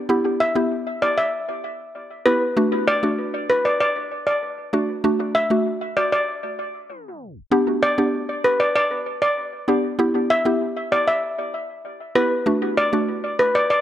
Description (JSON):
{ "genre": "dancehall", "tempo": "97 BPM", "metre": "4/4", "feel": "straight", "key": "unclear", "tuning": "A4 = 440 Hz", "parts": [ { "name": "mallet-like synth pluck", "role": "accompaniment", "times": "0.1-13.1 s", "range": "A3 to G4", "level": "-22 LUFS", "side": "equal", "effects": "chorus, tape echo" }, { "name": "steel pan", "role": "melody", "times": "0.4-13.8 s", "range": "B4 to E5", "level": "-20 LUFS", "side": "equal", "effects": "tape echo" } ], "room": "moderate spring reverb, RT60 1.4 s, small room ambience", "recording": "echo-heavy mix, tape stop", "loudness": "-18 LUFS", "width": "side -11 dB against mid", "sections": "0.0-7.5 A section; 7.5-13.8 B section", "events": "tape stop 6.9-7.5", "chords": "0.1 Em; 2.6 D; 7.5 G; 10.0 Em; 12.5 D", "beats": "| 0.10 0.71 1.33 1.95 | 2.57 3.19 3.81 4.42 | 5.04 5.66 6.28 6.90 | 7.52 8.14 8.75 9.37 | 9.99 10.61 11.23 11.85 | 12.47 13.08 13.70" }